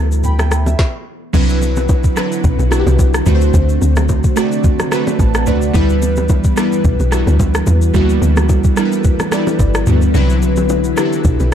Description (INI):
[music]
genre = amapiano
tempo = 109 BPM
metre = 4/4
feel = swing 55% on 16ths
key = G major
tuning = A4 = 440 Hz
[part]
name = glassy digital keys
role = accompaniment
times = 0.0-11.5 s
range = F#3 to B5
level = -18 LUFS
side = right 1 dB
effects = chorus, low-pass filter
[part]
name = string machine, cellos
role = sustained chords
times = 0.0-11.5 s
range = D3 to F#5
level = -22 LUFS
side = left 1 dB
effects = ensemble chorus, sidechain pumping, low-pass filter
[part]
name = saturated sub bass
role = bass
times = 0.0-0.8 s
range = D2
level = -14 LUFS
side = equal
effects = none
[part]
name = smooth R&B drum kit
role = drums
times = 0.1-11.5 s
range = crash cymbal, kick drum, rim click, shaker, snare drum, toms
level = -17 LUFS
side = equal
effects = none
[part]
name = congas and bongos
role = percussion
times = 0.2-11.5 s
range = none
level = -23 LUFS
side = right 1 dB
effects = none
[part]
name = woody log drum bass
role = bass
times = 1.3-11.5 s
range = G1 to E2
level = -14 LUFS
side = equal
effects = none
[sound]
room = little or no reverb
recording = dark, warm production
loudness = -12 LUFS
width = side -9 dB against mid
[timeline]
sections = 0.0-1.3 A section; 1.3-11.5 B section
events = filter sweep 0.0-1.3; stop 0.8-1.3; synth keys fill 4.9-5.7; kick muted 10.1-11.2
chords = 0.0 G6/D; 1.3 Cmaj9#11; 3.3 D7; 5.7 G6; 10.1 Cmaj9#11